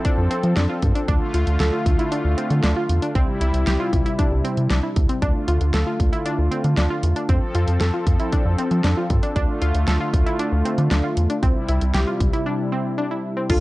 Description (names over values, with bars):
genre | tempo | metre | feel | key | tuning
synth-pop | 116 BPM | 4/4 | straight | D minor | A4 = 441 Hz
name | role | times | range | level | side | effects
brassy analog pad | sustained chords | 0.0-13.6 s | C3 to A4 | -25 LUFS | left 1 dB | chorus
analog pluck | arpeggios | 0.0-13.6 s | C4 to A4 | -26 LUFS | equal | chorus, analog delay
pop drum kit | drums | 0.0-13.6 s | crash cymbal, hi-hat, kick drum, snare drum | -22 LUFS | equal | none
rubbery square bass | bass | 0.2-13.6 s | C2 to F3 | -20 LUFS | equal | none
muted felt-like synth keys | accompaniment | 13.5-13.6 s | A3 to A4 | -21 LUFS | left 2 dB | chorus
room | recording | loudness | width
little or no reverb | dry, gritty hardware recording, cassette tape | -18 LUFS | side -19 dB against mid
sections
0.0-13.5 A section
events
break 12.5-13.5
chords
0.0 F; 1.1 Dm; 3.2 C; 5.2 Dm; 7.3 F; 9.4 Dm; 11.4 C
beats
0.05 0.57 | 1.08 1.60 2.12 2.63 | 3.15 3.67 4.19 4.70 | 5.22 5.74 6.25 6.77 | 7.29 7.81 8.32 8.84 | 9.36 9.88 10.39 10.91 | 11.43 11.95 12.46 12.98 | 13.50